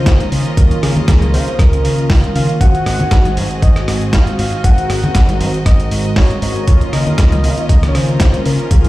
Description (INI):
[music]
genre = nu-disco, nu disco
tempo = 118 BPM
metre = 4/4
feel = swing 54% on 16ths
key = Db major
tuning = A4 = 440 Hz
[part]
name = soft octave-layered synth lead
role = melody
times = 0.0-8.9 s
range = Ab4 to Gb5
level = -23 LUFS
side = equal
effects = chorus, tape echo
[part]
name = mellow synth brass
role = accompaniment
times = 0.0-8.9 s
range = Eb3 to Gb4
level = -21 LUFS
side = right 1 dB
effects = chorus, sidechain pumping
[part]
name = warm studio string section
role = sustained chords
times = 0.0-8.9 s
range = C4 to F5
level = -27 LUFS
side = equal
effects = sidechain pumping
[part]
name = fingered electric bass with an envelope filter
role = bass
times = 0.0-8.8 s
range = Ab1 to Db3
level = -16 LUFS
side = equal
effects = none
[part]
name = dusty soul sampler-style drum kit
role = drums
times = 0.1-8.9 s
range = hi-hat, rim click, snare drum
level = -22 LUFS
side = equal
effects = overdrive, studio reverb
[part]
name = electronic kick drum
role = drums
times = 0.1-8.8 s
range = none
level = -12 LUFS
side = equal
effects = overdrive, studio reverb
[part]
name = congas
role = percussion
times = 0.7-8.9 s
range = none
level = -21 LUFS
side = left 1 dB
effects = none
[sound]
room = digital ambience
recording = played on a big sound system in a bare room, large studio reverb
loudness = -11 LUFS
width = side -17 dB against mid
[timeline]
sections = 0.0-8.9 A section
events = none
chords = 0.0 Db69; 2.6 Ab7; 6.7 Db69